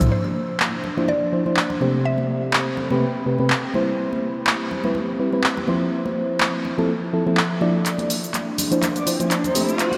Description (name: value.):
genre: deep house.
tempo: 124 BPM.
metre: 4/4.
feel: swing 55% on 16ths.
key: D dorian.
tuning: A4 = 440 Hz.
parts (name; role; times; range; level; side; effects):
mallet-like synth pluck; melody; 0.0-3.7 s; C5 to E6; -32 LUFS; equal; chorus, phaser, diffuse ambient delay.
mellow FM electric piano; stabs; 0.0-10.0 s; C3 to D5; -25 LUFS; equal; chorus, cassette tape, diffuse ambient delay.
punchy analog drum machine; drums; 0.0-10.0 s; handclaps, hi-hat, shaker, toms; -27 LUFS; equal; none.
warbly tape-like pad; texture; 0.0-10.0 s; F3 to C6; -32 LUFS; equal; chorus, built-in reverb.
congas; percussion; 0.2-10.0 s; none; -32 LUFS; equal; none.
riser; sound effects; 8.6-10.0 s; none; -32 LUFS; equal; none.
breathy flute-like synth lead; melody; 9.0-10.0 s; C5 to D5; -30 LUFS; equal; ensemble chorus, tape echo.
room: wet huge ambient reverb, RT60 4.6 s.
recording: dreamy mix soaked in reverb.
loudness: -22 LUFS.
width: mono.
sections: 0.1-7.9 A section; 7.9-10.0 B section.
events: build-up 7.9-10.0; drum fill 7.9-10.0; riser 8.6-10.0.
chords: 0.1 Dm9; 1.8 Am9/C; 3.7 Cmaj7; 5.7 Fmaj7; 7.9 Dm9.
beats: | 0.12 0.60 1.08 1.57 | 2.05 2.54 3.02 3.50 | 3.99 4.47 4.96 5.44 | 5.92 6.41 6.89 7.38 | 7.86 8.34 8.83 9.31 | 9.79.